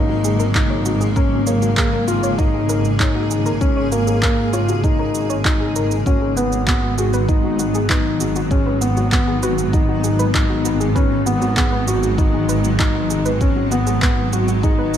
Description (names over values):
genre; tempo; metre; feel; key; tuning
piano and strings electronica; 98 BPM; 4/4; straight; G# minor; A4 = 440 Hz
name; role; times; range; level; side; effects
granular cloud pad; sustained chords; 0.0-15.0 s; C#3 to G#4; -23 LUFS; left 1 dB; built-in reverb
soft round pluck; arpeggios; 0.0-14.9 s; F#4 to C#5; -27 LUFS; equal; lush chorus, sidechain pumping, ping-pong delay
felt-muted upright piano; riff; 0.0-15.0 s; A#3 to F#4; -21 LUFS; left 1 dB; ping-pong delay
rich studio double bass section; bass; 0.0-15.0 s; G#1; -21 LUFS; equal; sidechain pumping
electronic shaker and handclaps; drums; 0.2-15.0 s; none; -24 LUFS; right 1 dB; none
electronic kick drum; drums; 0.5-14.8 s; none; -18 LUFS; right 1 dB; none
room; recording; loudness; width
light reverb, digital ambience; none; -15 LUFS; side -9 dB against mid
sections
0.0-15.0 A section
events
none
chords
0.0 F#add9/G#; 6.1 G#m7